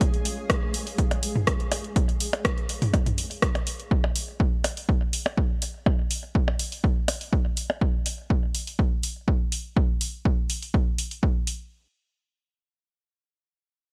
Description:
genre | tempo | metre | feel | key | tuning
minimal techno | 123 BPM | 4/4 | straight | Bb minor | A4 = 440 Hz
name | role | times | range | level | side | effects
electronic kick drum | drums | 0.0-11.3 s | none | -26 LUFS | equal | studio reverb
house drum kit | drums | 0.0-11.6 s | hi-hat, rim click | -31 LUFS | equal | studio reverb
flickering grainy texture | texture | 0.0-3.9 s | Ab3 to Ab4 | -41 LUFS | equal | built-in reverb, sidechain pumping
granular cloud pad | texture | 0.0-3.9 s | Ab4 to F5 | -46 LUFS | equal | built-in reverb, sidechain pumping
electronic percussion blips and toms | percussion | 0.5-7.8 s | none | -30 LUFS | equal | studio reverb, tape echo
room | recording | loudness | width
little or no reverb | none | -26 LUFS | mono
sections
0.0-11.7 A section; 11.7-13.9 B section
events
fade-out on ambient pad 0.0-3.9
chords
0.0 Bbm7 (rootless); 11.7 N.C.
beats
| 0.01 0.50 0.98 1.47 | 1.96 2.45 2.94 3.42 | 3.91 4.40 4.89 5.38 | 5.86 6.35 6.84 7.33 | 7.81 8.30 8.79 9.28 | 9.77 10.25 10.74 11.23

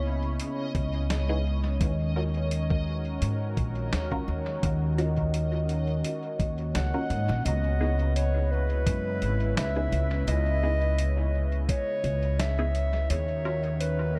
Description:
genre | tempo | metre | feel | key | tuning
ambient dub | 85 BPM | 4/4 | swing 54% on 16ths | C# dorian | A4 = 440 Hz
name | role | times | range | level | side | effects
warm analog pad | sustained chords | 0.0-14.2 s | C#3 to B5 | -39 LUFS | equal | chorus, tremolo
vibraphone with soft mallets | arpeggios | 0.0-14.2 s | G#3 to D#5 | -40 LUFS | equal | vintage 12-bit sampler grit, dub echo
upright bass | bass | 0.0-14.2 s | G#1 to G#2 | -29 LUFS | equal | tube saturation
backwards swelling texture | texture | 0.0-7.5 s | D#5 | -44 LUFS | equal | built-in reverb
lo-fi sampler-style drum kit | drums | 0.4-14.0 s | hi-hat, snare drum | -38 LUFS | equal | dub echo
electronic kick drum | drums | 0.7-11.8 s | none | -31 LUFS | equal | none
filtered dub chord stab | stabs | 1.3-13.7 s | B3 to A#4 | -41 LUFS | equal | phaser, cassette tape, dub echo
mellow clarinet | melody | 6.7-14.2 s | A#4 to F#5 | -34 LUFS | equal | dub echo
room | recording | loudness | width
light reverb, studio ambience | echo-heavy mix | -28 LUFS | mono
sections
0.0-7.5 A section; 7.5-14.2 B section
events
filter sweep on synth stab 0.0-7.5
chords
0.0 C#m7; 1.8 D#m7; 7.5 C#m7; 13.1 D#m7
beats
0.39 1.10 | 1.80 2.51 3.22 3.92 | 4.63 5.33 6.04 6.75 | 7.45 8.16 8.86 9.57 | 10.28 10.98 11.69 12.39 | 13.10 13.80

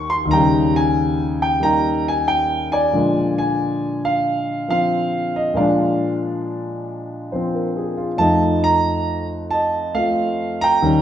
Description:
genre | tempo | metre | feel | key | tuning
solo jazz | 91 BPM | 4/4 | swing 68% on 8ths | Bb mixolydian | A4 = 439 Hz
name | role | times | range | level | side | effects
warm grand piano | solo | 0.0-11.0 s | Eb2 to C6 | -17 LUFS | equal | none
room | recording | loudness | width
wet large studio reverb, RT60 1.5 s | heard from further back in the room | -17 LUFS | side -10 dB against mid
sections
0.0-11.0 A section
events
none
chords
0.0 Eb7; 2.9 Bb7; 8.2 F7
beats
| 0.30 0.96 1.62 2.27 | 2.93 3.59 4.25 4.91 | 5.57 6.22 6.88 7.54 | 8.20 8.85 9.51 10.17 | 10.82

